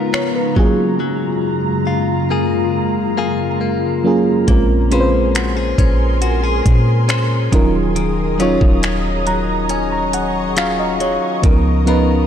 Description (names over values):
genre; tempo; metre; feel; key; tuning
contemporary R&B; 69 BPM; 4/4; straight; Bb minor; A4 = 439 Hz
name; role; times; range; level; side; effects
mellow FM electric piano; accompaniment; 0.0-12.3 s; F3 to Bb5; -19 LUFS; right 2 dB; chorus
ethereal airy pad; sustained chords; 0.0-12.3 s; Gb2 to Eb6; -21 LUFS; left 1 dB; ensemble chorus, built-in reverb
direct-recorded clean electric guitar; arpeggios; 0.0-12.3 s; Db3 to C5; -23 LUFS; left 8 dB; tape echo
trap drum kit; drums; 0.1-12.1 s; finger snaps, hi-hat, kick drum; -17 LUFS; equal; vintage 12-bit sampler grit
warm 808-style bass; bass; 4.5-12.3 s; Eb1 to Bb2; -18 LUFS; equal; none
room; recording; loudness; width
light reverb; none; -14 LUFS; side -9 dB against mid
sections
0.0-4.5 A section; 4.5-12.3 B section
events
FM electric piano fill 8.8-11.4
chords
0.0 Db13; 0.6 Gbmaj9; 4.5 Bbm9; 7.5 Ebm9; 11.4 Db13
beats
0.13 | 1.00 1.87 2.74 3.61 | 4.48 5.35 6.22 7.09 | 7.96 8.83 9.70 10.56 | 11.44